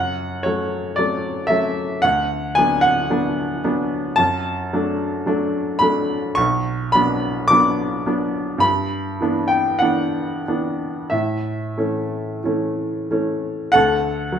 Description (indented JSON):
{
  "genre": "classical, romantic nocturne for solo piano",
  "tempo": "44-57 BPM",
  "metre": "4/4",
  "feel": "rubato",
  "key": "D major from 4.2 s",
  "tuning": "A4 = 436 Hz",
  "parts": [
    { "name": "clear baby grand piano", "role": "solo", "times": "0.0-14.4 s", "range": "B1 to D6", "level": "-18 LUFS", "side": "equal", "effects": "none" }
  ],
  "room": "moderate large studio reverb, RT60 1.1 s",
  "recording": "heard from further back in the room",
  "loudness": "-18 LUFS",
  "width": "side -8 dB against mid",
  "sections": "0.0-13.7 A section",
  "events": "none",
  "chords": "0.0 F#m; 2.0 Bm/D; 4.2 D/F#; 6.4 Bm; 8.6 Em7/G; 11.1 A; 13.7 D",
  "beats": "0.98 2.03 3.10 | 4.18 5.26 6.38 7.51 | 8.64 9.82 11.12 12.44 | 13.74"
}